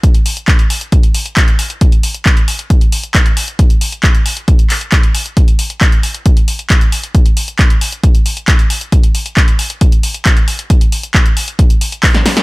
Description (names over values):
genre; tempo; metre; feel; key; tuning
trance; 135 BPM; 4/4; straight; none; none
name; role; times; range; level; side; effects
electronic kick drum; drums; 0.0-12.1 s; none; -9 LUFS; equal; none
punchy analog drum machine; drums; 0.0-12.4 s; handclaps, hi-hat, snare drum; -16 LUFS; equal; sidechain pumping on hats, sidechain pumping on cymbals
room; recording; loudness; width
little or no reverb; none; -9 LUFS; side -23 dB against mid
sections
0.0-12.4 A section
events
drum fill 12.1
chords
none